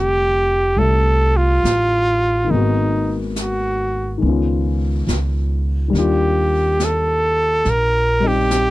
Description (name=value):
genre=jazz ballad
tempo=70 BPM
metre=4/4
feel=swing 67% on 8ths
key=unclear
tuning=A4 = 441 Hz
part: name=clear trumpet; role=melody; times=0.0-8.7 s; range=Eb4 to Bb4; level=-17 LUFS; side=right 1 dB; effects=none
part: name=dark grand piano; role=accompaniment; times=0.0-8.7 s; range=D3 to E5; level=-23 LUFS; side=left 5 dB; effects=none
part: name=upright bass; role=bass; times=0.0-8.7 s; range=F1 to Eb2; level=-19 LUFS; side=right 1 dB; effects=none
part: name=jazz brush drum kit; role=drums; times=0.8-8.7 s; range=brushed snare drum, hi-hat, snare drum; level=-28 LUFS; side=left 1 dB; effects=none
room=little or no reverb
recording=none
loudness=-15 LUFS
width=side -18 dB against mid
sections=0.0-8.7 A section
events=none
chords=0.0 F69; 2.5 Abm7; 4.2 Db9; 5.9 Ebmaj9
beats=0.78 1.64 | 2.50 3.36 4.21 5.07 | 5.93 6.79 7.64 8.50